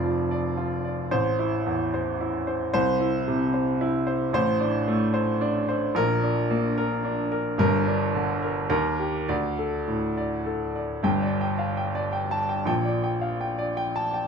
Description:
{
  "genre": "classical, virtuoso piano study",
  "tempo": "110 BPM",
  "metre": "3/4",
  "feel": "rubato",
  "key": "G minor from 4.3 s",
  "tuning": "A4 = 438 Hz",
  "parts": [
    { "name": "warm baby grand piano", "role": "solo", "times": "0.0-14.3 s", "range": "F1 to A5", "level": "-23 LUFS", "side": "equal", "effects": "none" }
  ],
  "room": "moderate recital hall reverb, RT60 1.6 s",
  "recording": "close, detailed microphones",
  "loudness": "-23 LUFS",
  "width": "side -6 dB against mid",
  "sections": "0.0-11.0 A section; 11.0-14.3 B section",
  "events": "none",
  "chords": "0.0 Dm/F; 1.1 Am; 2.7 C; 4.3 D5/A; 6.0 Bb; 7.6 Gm; 8.7 Eb; 9.3 D5; 11.0 G5; 12.7 Gm/Bb"
}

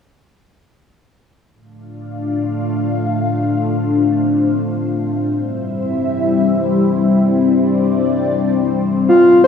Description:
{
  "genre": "EDM",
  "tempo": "free time",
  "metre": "none",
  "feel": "none",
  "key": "D minor",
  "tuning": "A4 = 440 Hz",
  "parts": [
    { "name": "lush unison pad", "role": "sustained chords", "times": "2.0-9.5 s", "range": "G3 to F5", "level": "-15 LUFS", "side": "left 2 dB", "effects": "chorus, phaser" },
    { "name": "breathy flute-like synth lead", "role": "melody", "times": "9.1-9.5 s", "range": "F4 to C5", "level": "-6 LUFS", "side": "equal", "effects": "chorus, tremolo" }
  ],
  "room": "moderate lush hall reverb, RT60 1.8 s, digital ambience",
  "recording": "none",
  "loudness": "-14 LUFS",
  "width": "side -7 dB against mid",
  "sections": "1.5-9.5 A section",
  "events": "filter sweep on analog synth pad 1.5-9.5",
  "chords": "1.5 Dm; 5.3 C"
}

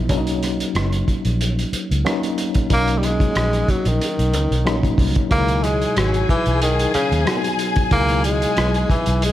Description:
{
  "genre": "lush 1970s-style soul",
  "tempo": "92 BPM",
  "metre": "4/4",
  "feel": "swing 54% on 16ths",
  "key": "unclear",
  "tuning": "A4 = 444 Hz",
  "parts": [
    { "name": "tine electric piano", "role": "accompaniment", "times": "0.0-9.3 s", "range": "B2 to F#4", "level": "-24 LUFS", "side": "left 2 dB", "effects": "overdrive, fast stereo tremolo" },
    { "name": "vintage muted fingered electric bass", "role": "bass", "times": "0.0-9.3 s", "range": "F#1 to D#2", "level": "-21 LUFS", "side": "equal", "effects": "none" },
    { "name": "cloth-damped thuddy drum kit", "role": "drums", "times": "0.1-9.3 s", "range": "hi-hat, kick drum, rim click", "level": "-22 LUFS", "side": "equal", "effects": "none" },
    { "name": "breathy tenor saxophone", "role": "melody", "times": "2.7-9.3 s", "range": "C#3 to A#3", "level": "-21 LUFS", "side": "equal", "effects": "none" },
    { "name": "rich studio string section", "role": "second line", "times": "5.3-9.3 s", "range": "G#4 to G#5", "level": "-25 LUFS", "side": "left 5 dB", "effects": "none" }
  ],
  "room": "small room ambience",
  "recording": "none",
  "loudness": "-16 LUFS",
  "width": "side -13 dB against mid",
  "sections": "0.0-9.3 A section",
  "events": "none",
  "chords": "0.1 Bmaj9; 5.3 C#m11"
}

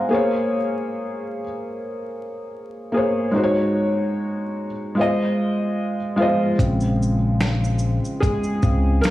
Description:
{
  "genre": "lo-fi hip hop",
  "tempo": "74 BPM",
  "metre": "4/4",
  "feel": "swing 56% on 16ths",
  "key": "Bb minor",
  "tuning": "A4 = 437 Hz",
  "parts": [
    { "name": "felt-muted upright piano", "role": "accompaniment", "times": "0.0-9.1 s", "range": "Db3 to C6", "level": "-21 LUFS", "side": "equal", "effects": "low-pass filter" },
    { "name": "smooth gliding synth bass", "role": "bass", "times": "6.6-9.0 s", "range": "Bb1 to Db2", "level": "-20 LUFS", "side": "equal", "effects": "none" },
    { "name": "dusty soul sampler-style drum kit", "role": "drums", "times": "6.6-9.1 s", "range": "finger snaps, hi-hat, kick drum, shaker, snare drum", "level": "-22 LUFS", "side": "equal", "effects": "none" }
  ],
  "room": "light reverb",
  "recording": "vinyl crackle, studio reverb",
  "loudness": "-19 LUFS",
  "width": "side -15 dB against mid",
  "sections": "0.0-6.6 A section; 6.6-9.1 B section",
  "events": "felt piano solo 6.6-9.1",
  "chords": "0.1 Bbm9; 3.4 Ab7sus4; 5.0 Fm7/Ab; 6.6 Bbm9"
}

